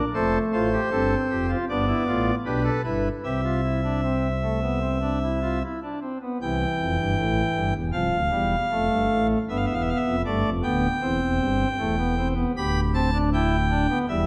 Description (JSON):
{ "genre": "classical, baroque-style 4-part fugue for pipe organ", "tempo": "78 BPM", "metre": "4/4", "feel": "straight", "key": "C major", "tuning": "A4 = 440 Hz", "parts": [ { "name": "pipe organ, cornet", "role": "solo", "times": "0.0-14.3 s", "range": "C1 to B5", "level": "-24 LUFS", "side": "equal", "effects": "none" } ], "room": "wet recital hall reverb, RT60 1.4 s", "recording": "none", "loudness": "-24 LUFS", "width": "mono", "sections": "0.0-6.4 A section; 6.4-14.3 B section", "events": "none", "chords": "0.1 Fadd9; 1.7 G7; 3.2 C; 7.9 Dm7/C; 9.5 G7; 11.0 C/E; 12.6 G/D" }